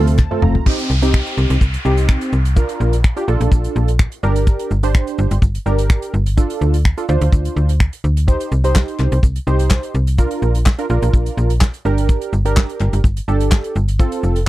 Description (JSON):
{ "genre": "dance-pop", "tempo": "126 BPM", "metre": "4/4", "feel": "straight", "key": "G minor", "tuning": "A4 = 440 Hz", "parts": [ { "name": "warm analog keys", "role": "accompaniment", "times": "0.0-14.4 s", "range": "A3 to Bb5", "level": "-21 LUFS", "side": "right 2 dB", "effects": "chorus, sidechain pumping" }, { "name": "chorused pulse-width pad", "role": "sustained chords", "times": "0.0-0.6 s", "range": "C3 to F4", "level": "-28 LUFS", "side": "right 2 dB", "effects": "none" }, { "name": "slap-like FM bass", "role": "bass", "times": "0.0-14.5 s", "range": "F1 to D2", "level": "-16 LUFS", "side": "equal", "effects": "sidechain pumping" }, { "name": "damped 70s drum kit", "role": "drums", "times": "0.1-14.5 s", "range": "crash cymbal, finger snaps, handclaps, hi-hat, kick drum, shaker, snare drum, toms", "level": "-15 LUFS", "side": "equal", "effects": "none" }, { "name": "group handclap", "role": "percussion", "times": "0.2-0.3, 8.8-13.6 s", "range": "none", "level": "-33 LUFS", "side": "left 13 dB", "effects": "none" }, { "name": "downlifter and riser", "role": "sound effects", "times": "0.7-4.5, 14.0-14.5 s", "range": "none", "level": "-28 LUFS", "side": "equal", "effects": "none" } ], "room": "little or no reverb", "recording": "dry, close 1970s-style studio recording", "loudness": "-14 LUFS", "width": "side -16 dB against mid", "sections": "0.7-14.5 A section", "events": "synth keys fill 0.0-0.7; drum fill 0.2-0.7", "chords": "0.0 F; 0.7 Cm; 2.6 Bb; 4.2 Gm; 6.4 Dm; 8.3 Cm; 10.2 Bb; 11.9 Gm" }